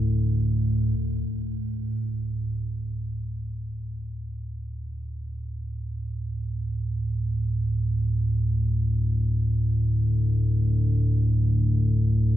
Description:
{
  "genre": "ambient",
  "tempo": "free time",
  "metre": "none",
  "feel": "none",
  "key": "unclear",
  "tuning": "A4 = 441 Hz",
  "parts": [
    { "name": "deep rumbling drone", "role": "solo", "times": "0.0-12.4 s", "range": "D2 to A2", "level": "-23 LUFS", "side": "equal", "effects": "built-in reverb" }
  ],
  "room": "wet cathedral reverb, RT60 5.5 s",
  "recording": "in a vast, echoing space",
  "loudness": "-23 LUFS",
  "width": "side -12 dB against mid",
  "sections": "1.0-12.4 A section",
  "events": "none",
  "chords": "0.0 D5"
}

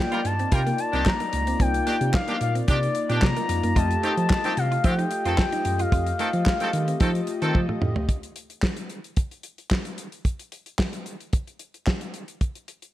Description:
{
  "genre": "early-eighties boogie funk",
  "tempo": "111 BPM",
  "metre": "4/4",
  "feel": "straight",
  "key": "unclear",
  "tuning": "A4 = 440 Hz",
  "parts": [
    { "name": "expressive synth lead", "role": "melody", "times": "0.0-7.4 s", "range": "D5 to Bb5", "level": "-27 LUFS", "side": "left 3 dB", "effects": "chorus" },
    { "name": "chorused polysynth", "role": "accompaniment", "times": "0.0-8.1 s", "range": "A3 to Eb5", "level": "-30 LUFS", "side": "left 2 dB", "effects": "none" },
    { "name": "clear horn section", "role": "second line", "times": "0.1-7.6 s", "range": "Eb3 to Bb4", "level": "-30 LUFS", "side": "equal", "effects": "none" },
    { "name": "clean electric guitar", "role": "riff", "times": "0.1-8.1 s", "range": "A3 to F4", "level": "-34 LUFS", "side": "right 4 dB", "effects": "wide subtle chorus" },
    { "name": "damped 70s drum kit", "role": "drums", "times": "0.1-12.9 s", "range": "handclaps, hi-hat, kick drum, snare drum, toms", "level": "-25 LUFS", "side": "equal", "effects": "gated reverb" },
    { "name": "mellow tine electric piano", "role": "bass", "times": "0.2-8.1 s", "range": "C2 to F3", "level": "-26 LUFS", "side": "equal", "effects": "medium stereo tremolo" }
  ],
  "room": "light reverb",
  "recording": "none",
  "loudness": "-22 LUFS",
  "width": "side -14 dB against mid",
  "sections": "0.0-8.1 A section; 8.1-12.9 B section",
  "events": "drum fill 7.5-8.1",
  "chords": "0.0 Cm11; 3.8 F9; 8.1 N.C."
}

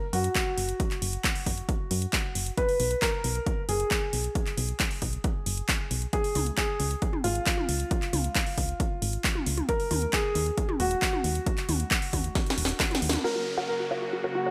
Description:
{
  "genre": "uplifting trance",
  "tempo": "135 BPM",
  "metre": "4/4",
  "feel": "straight",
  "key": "F# major",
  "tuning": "A4 = 440 Hz",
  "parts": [
    { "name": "dark baby grand piano", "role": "second line", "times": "0.0-14.5 s", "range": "E#4 to B4", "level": "-34 LUFS", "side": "equal", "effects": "delay" },
    { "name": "solid FM bass", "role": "bass", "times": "0.1-13.2 s", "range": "D#1 to F#2", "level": "-32 LUFS", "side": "equal", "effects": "sidechain pumping" },
    { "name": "techno drum kit", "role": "drums", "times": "0.1-13.2 s", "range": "handclaps, hi-hat, snare drum, toms", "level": "-32 LUFS", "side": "equal", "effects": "studio reverb" },
    { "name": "electronic kick drum", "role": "drums", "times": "0.4-12.9 s", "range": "none", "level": "-32 LUFS", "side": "equal", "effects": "studio reverb" },
    { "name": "unison pluck", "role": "melody", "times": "13.2-14.5 s", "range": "E#4 to F#5", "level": "-34 LUFS", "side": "equal", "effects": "sidechain pumping, delay" },
    { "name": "filtered supersaw swell", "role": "sustained chords", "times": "13.2-14.5 s", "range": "C#3 to F#4", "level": "-37 LUFS", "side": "equal", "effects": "vintage 12-bit sampler grit, sidechain pumping" },
    { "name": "downlifter", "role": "sound effects", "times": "13.2-14.5 s", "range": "none", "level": "-39 LUFS", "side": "equal", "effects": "none" }
  ],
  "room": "light reverb",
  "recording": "none",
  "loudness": "-28 LUFS",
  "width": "mono",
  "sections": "0.0-13.2 A section; 13.2-14.5 B section",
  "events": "drum fill 12.4-13.2; band accent 13.1",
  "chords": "0.0 N.C.; 2.6 B5; 6.1 C#5; 9.7 D#m; 13.2 F#"
}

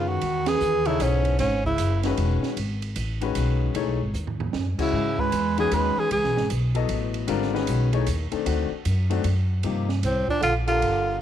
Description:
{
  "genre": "modal jazz",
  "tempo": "153 BPM",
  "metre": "3/4",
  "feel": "swing 64% on 8ths",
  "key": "C# minor",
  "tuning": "A4 = 439 Hz",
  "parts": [
    { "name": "clear tenor saxophone", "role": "melody", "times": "0.0-2.0, 4.8-6.5, 10.1-11.2 s", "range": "C4 to B4", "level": "-24 LUFS", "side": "equal", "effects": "none" },
    { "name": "warm bass clarinet", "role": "second line", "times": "0.0-2.0, 4.8-6.5, 10.0-11.2 s", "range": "G#2 to G#3", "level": "-29 LUFS", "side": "right 8 dB", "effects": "none" },
    { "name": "warm concert grand piano", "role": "accompaniment", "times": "0.0-11.2 s", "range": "C3 to D#5", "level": "-28 LUFS", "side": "left 11 dB", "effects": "none" },
    { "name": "upright bass", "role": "bass", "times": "0.0-11.2 s", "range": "E1 to G#2", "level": "-25 LUFS", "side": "equal", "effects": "transformer saturation" },
    { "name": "open jazz drum kit", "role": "drums", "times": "0.2-10.9 s", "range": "crash cymbal, hi-hat, kick drum, ride cymbal, snare drum, toms", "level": "-33 LUFS", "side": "right 6 dB", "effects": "none" }
  ],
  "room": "light reverb, small room ambience",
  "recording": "1960s-style stereo with parts hard left and right",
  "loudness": "-22 LUFS",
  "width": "side -10 dB against mid",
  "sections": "0.2-9.6 A section; 9.6-11.2 B section",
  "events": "band accent 0.4, 4.7; drum fill 4.1-4.5",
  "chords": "0.2 C#m9; 8.5 D7b9; 9.6 Gm11"
}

